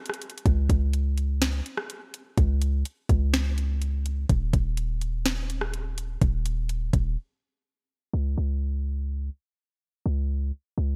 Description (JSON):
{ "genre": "hip hop, atmospheric cloud-rap", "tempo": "125 BPM", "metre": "4/4", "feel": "half-time", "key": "unclear", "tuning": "A4 = 439 Hz", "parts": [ { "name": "smooth R&B drum kit", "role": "drums", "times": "0.1-7.0 s", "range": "hi-hat, kick drum, rim click, snare drum", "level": "-28 LUFS", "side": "equal", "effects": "gated reverb" }, { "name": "warm 808-style bass", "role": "bass", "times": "0.5-11.0 s", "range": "Eb1 to Db2", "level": "-28 LUFS", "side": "equal", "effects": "none" } ], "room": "little or no reverb", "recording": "bright 1980s-style digital production, low-pass filter", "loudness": "-27 LUFS", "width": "mono", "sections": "0.0-8.1 A section; 8.1-11.0 B section", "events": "break 0.0-0.5, 7.2-8.1; filter sweep 8.1-11.0", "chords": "none" }